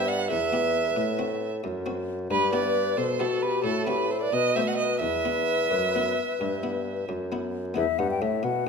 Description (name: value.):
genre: classical, baroque-style sonata movement with continuo.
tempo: 89 BPM (dotted quarters).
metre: 12/8.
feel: straight.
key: E minor.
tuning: A4 = 438 Hz.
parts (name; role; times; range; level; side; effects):
mellow hollow silver concert flute; melody; 0.0-8.7 s; F#4 to G5; -29 LUFS; left 10 dB; none.
rich violin; second line; 0.0-7.0 s; A4 to F#5; -27 LUFS; right 6 dB; none.
buff-stop harpsichord; accompaniment; 0.0-8.7 s; E2 to G4; -33 LUFS; left 3 dB; none.
mellow bassoon; bass; 0.0-8.7 s; E2 to B2; -30 LUFS; equal; none.
room: moderate recital hall reverb, RT60 1.4 s.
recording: none.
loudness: -24 LUFS.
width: side -5 dB against mid.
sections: 0.0-7.8 A section.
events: none.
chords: 0.0 Em/G; 1.0 F#dim/A; 2.3 Em/G; 3.6 F#m7b5/A; 4.3 B5; 5.0 Em.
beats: 0.30 0.97 1.64 | 2.30 2.98 3.65 4.32 | 5.01 5.70 6.40 7.08 | 7.77 8.44.